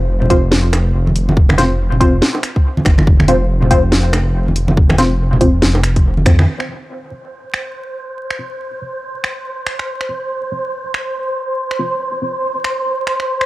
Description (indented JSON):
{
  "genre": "deep dubstep",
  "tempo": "141 BPM",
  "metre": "4/4",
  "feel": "swing 61% on 16ths, half-time",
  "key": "unclear",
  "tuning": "A4 = 440 Hz",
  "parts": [
    { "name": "dark detuned saw bass", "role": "bass", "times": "0.0-6.5 s", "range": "F1 to F2", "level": "-15 LUFS", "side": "equal", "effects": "none" },
    { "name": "congas and bongos", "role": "percussion", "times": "0.2-6.5 s", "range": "none", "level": "-18 LUFS", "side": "right 1 dB", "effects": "none" },
    { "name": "filtered dub chord stab", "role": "stabs", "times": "0.3-12.3 s", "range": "C4 to C5", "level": "-19 LUFS", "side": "left 1 dB", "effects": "phaser, dub echo" },
    { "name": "electronic kick drum", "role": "drums", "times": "0.3-6.4 s", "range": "none", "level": "-12 LUFS", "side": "equal", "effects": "none" },
    { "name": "garage drum kit", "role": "drums", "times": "0.3-13.5 s", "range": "finger snaps, hi-hat, snare drum", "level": "-18 LUFS", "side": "equal", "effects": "none" },
    { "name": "wind-like tuned noise texture", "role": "texture", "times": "7.1-13.5 s", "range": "C5", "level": "-21 LUFS", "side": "right 1 dB", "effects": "built-in reverb" }
  ],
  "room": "little or no reverb",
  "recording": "dry, gritty hardware recording, vinyl crackle",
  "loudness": "-13 LUFS",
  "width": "side -18 dB against mid",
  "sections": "0.0-6.5 A section; 6.5-13.5 B section",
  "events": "band accent 6.3",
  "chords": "0.0 F5"
}